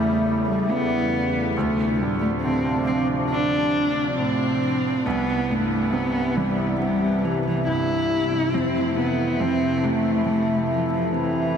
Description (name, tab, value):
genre	pop ballad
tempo	69 BPM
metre	4/4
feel	straight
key	C major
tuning	A4 = 440 Hz
part	dark cello	melody	0.0-11.6 s	E3 to E4	-22 LUFS	equal	none
part	clear grand piano	accompaniment	0.0-11.6 s	C2 to F3	-28 LUFS	right 3 dB	none
part	sweeping resonant pad	sustained chords	0.0-11.6 s	E2 to E4	-26 LUFS	left 1 dB	lush chorus
room	wet huge ambient reverb, RT60 7.9 s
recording	dreamy mix soaked in reverb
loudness	-20 LUFS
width	side -7 dB against mid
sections	0.0-11.6 A section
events	none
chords	0.0 A7/E; 1.6 Dm7; 5.1 Cmaj7; 8.5 Fmaj7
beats	0.69 | 1.56 2.43 3.30 4.18 | 5.05 5.93 6.80 7.67 | 8.53 9.39 10.26 11.12